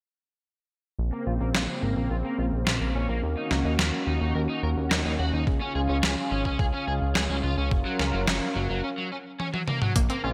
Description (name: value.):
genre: synthwave.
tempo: 107 BPM.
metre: 4/4.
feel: straight.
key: Bb minor.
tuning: A4 = 438 Hz.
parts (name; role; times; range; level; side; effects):
warm analog pad; sustained chords; 1.0-10.3 s; Db3 to Bb4; -33 LUFS; equal; lush chorus, sidechain pumping.
fat analog bass; bass; 1.0-10.3 s; Gb1 to Eb2; -30 LUFS; equal; sidechain pumping.
overdriven electric guitar; riff; 1.1-10.3 s; Gb3 to Bb4; -35 LUFS; equal; ensemble chorus, low-pass filter, digital delay.
detuned 8-bit digital drum machine; drums; 1.5-10.2 s; hi-hat, snare drum, toms; -31 LUFS; equal; gated reverb.
electronic kick drum; drums; 5.5-10.1 s; none; -28 LUFS; equal; none.
analog pluck; arpeggios; 10.0-10.3 s; Bb3 to Db4; -32 LUFS; equal; chorus.
room: moderate plate reverb, RT60 2.2 s.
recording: bright 1980s-style digital production.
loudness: -27 LUFS.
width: mono.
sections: 1.0-10.0 A section.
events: filter sweep on analog synth bass 1.0-10.0; filter sweep on overdriven electric guitar 1.0-10.0; break 8.8-10.0; drum fill 9.4-10.0.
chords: 1.0 Bbmadd9; 3.2 Ebm7; 5.5 Db; 7.7 Gbmaj7.